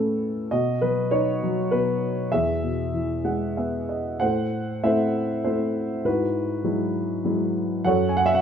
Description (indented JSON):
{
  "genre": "classical, lyrical solo piano",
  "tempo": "99 BPM",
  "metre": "3/4",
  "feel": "rubato",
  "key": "E major",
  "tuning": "A4 = 440 Hz",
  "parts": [
    { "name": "dark grand piano", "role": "solo", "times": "0.0-8.4 s", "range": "E2 to G#5", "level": "-22 LUFS", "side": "equal", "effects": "none" }
  ],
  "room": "moderate recital hall reverb, RT60 1.5 s",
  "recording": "none",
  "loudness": "-22 LUFS",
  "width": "side -8 dB against mid",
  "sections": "0.0-4.2 A section; 4.2-8.4 B section",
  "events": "grand piano fill 2.9-4.2",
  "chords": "0.0 A; 0.5 B; 2.3 E; 4.2 Am; 6.1 Eadd9/G#; 7.9 F#madd9",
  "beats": "| 0.52 1.12 1.72 | 2.33 2.94 3.57 | 4.21 4.84 5.45 | 6.05 6.66 7.26 | 7.85"
}